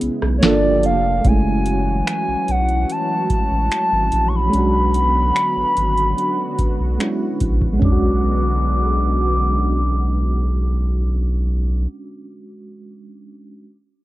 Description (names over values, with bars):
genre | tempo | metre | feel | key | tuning
contemporary R&B | 73 BPM | 4/4 | straight | B dorian | A4 = 440 Hz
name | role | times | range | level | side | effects
mellow FM electric piano | accompaniment | 0.0-13.6 s | G#3 to A4 | -24 LUFS | right 2 dB | chorus, tremolo, low-pass filter
lush unison pad | sustained chords | 0.0-11.9 s | C#3 to A4 | -26 LUFS | equal | chorus, low-pass filter
saturated sub bass | bass | 0.0-11.9 s | F1 to B1 | -19 LUFS | equal | none
booming analog drum machine | drums | 0.0-8.0 s | finger snaps, hi-hat, kick drum, rim click, snare drum, toms | -19 LUFS | equal | none
hollow clarinet-like synth lead | melody | 0.4-11.9 s | C#5 to D6 | -21 LUFS | equal | chorus, low-pass filter
room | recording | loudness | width
little or no reverb | worn, warbling old tape, cassette tape, warbly pitch drift | -16 LUFS | side -16 dB against mid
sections
0.0-1.2 A section; 1.2-7.8 B section; 7.8-11.1 C section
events
break 0.0-1.2; filter sweep 1.2-7.8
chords
0.4 Gm9; 1.2 F#m9; 4.5 Bm69